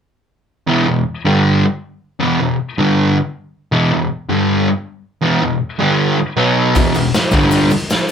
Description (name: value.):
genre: garage rock duo or trio.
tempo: 158 BPM.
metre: 4/4.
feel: straight.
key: unclear.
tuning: A4 = 440 Hz.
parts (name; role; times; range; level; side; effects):
fuzz guitar; riff; 0.7-7.7 s; E2 to B3; -13 LUFS; equal; distortion.
raw garage drum kit; drums; 6.7-8.1 s; hi-hat, kick drum, snare drum; -16 LUFS; equal; none.
tube shaker; percussion; 6.8-8.1 s; none; -31 LUFS; left 5 dB; none.
room: moderate small room reverb, RT60 0.6 s.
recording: band playing live in one room.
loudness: -13 LUFS.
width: side -7 dB against mid.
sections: 0.7-8.1 A section.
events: none.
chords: 0.7 E5; 1.3 G5; 2.2 E5; 2.8 G5; 3.7 E5; 4.3 G5; 5.3 E5; 5.8 G5; 6.4 B5; 6.8 E5; 7.3 G5.